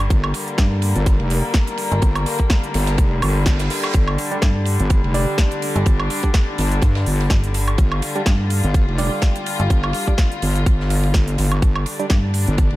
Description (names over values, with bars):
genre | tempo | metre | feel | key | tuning
bass house | 125 BPM | 4/4 | swing 55% on 16ths | G minor | A4 = 440 Hz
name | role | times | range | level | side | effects
dark chamber string section | sustained chords | 0.0-12.8 s | D3 to F4 | -25 LUFS | left 3 dB | sidechain pumping
metallic FM bass | bass | 0.0-12.5 s | G1 to G2 | -19 LUFS | equal | overdrive, sidechain pumping
big-room dance drum kit | drums | 0.0-12.7 s | hi-hat, snare drum, woodblock | -26 LUFS | right 1 dB | overdrive
wobble bass | bass | 0.1-12.8 s | F1 to G2 | -20 LUFS | equal | chorus, overdrive, sidechain pumping
electronic kick drum | drums | 0.1-12.7 s | none | -16 LUFS | equal | overdrive
open jazz drum kit | drums | 0.1-12.8 s | ride cymbal, snare drum | -35 LUFS | right 3 dB | sidechain pumping on cymbals, high-pass filter on cymbals, high-pass filter on snare, high-pass filter on room
reverse cymbal | sound effects | 3.2-3.9 s | none | -31 LUFS | right 7 dB | none
percussive organ stab | stabs | 4.3-12.1 s | G3 to D5 | -27 LUFS | right 3 dB | chorus, vintage 12-bit sampler grit, sidechain pumping, dub echo
room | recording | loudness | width
small room ambience | none | -16 LUFS | side -17 dB against mid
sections
0.0-12.8 A section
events
reverse cymbal 3.2-3.9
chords
0.0 G5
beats
| 0.10 0.58 1.06 1.54 | 2.02 2.50 2.98 3.46 | 3.94 4.42 4.90 5.38 | 5.86 6.34 6.82 7.30 | 7.78 8.26 8.74 9.22 | 9.70 10.18 10.66 11.14 | 11.62 12.10 12.58